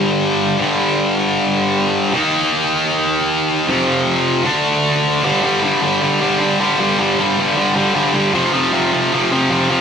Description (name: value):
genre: punk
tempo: 155 BPM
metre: 4/4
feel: straight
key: G minor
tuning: A4 = 442 Hz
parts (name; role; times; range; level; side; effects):
- tight distorted guitar; solo; 0.0-9.8 s; F2 to Eb4; -14 LUFS; equal; distortion
room: wet studio reverb, RT60 0.6 s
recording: rough rehearsal-room recording, tube saturation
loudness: -14 LUFS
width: side -7 dB against mid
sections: 0.0-5.2 A section; 5.2-9.8 B section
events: none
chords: 0.0 G5; 2.1 Eb5; 3.7 F5; 4.5 D5; 5.2 G5; 8.3 F5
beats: 0.20 | 0.58 0.97 1.36 1.75 | 2.13 2.52 2.91 3.29 | 3.68 4.07 4.46 4.84 | 5.23 5.62 6.01 6.39 | 6.78 7.17 7.56 7.95 | 8.33 8.72 9.11 9.50